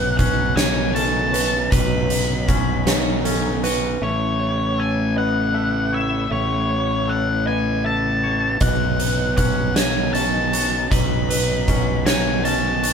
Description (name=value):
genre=post-rock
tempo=52 BPM (dotted quarters)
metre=6/8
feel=straight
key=unclear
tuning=A4 = 440 Hz
part: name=octave-fuzz lead guitar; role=melody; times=0.0-12.9 s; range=C#5 to B5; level=-24 LUFS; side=left 2 dB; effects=distortion
part: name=warm symphonic string section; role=sustained chords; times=0.0-12.9 s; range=C#3 to E4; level=-31 LUFS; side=left 2 dB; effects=none
part: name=electric guitar through a small old amp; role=arpeggios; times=0.0-12.9 s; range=A4 to E5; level=-28 LUFS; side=right 3 dB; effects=none
part: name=twangy electric guitar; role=arpeggios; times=0.0-12.9 s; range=B2 to C#5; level=-29 LUFS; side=left 2 dB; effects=harmonic tremolo
part: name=fuzz fingered electric bass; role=bass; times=0.0-12.9 s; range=A1 to B1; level=-23 LUFS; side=equal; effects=overdrive
part: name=oversized low-tuned drum kit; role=drums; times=0.2-3.8, 8.6-12.9 s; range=hi-hat, kick drum, snare drum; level=-21 LUFS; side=right 1 dB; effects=none
room=moderate small room reverb, RT60 0.5 s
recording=band playing live in one room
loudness=-17 LUFS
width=side -6 dB against mid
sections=0.0-4.0 A section; 4.0-12.9 A section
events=none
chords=0.0 Badd9; 4.0 Aadd9; 8.6 Badd9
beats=0.57 | 1.72 2.87 | 4.02 5.17 | 6.32 7.46 | 8.62 9.77 | 10.92 12.07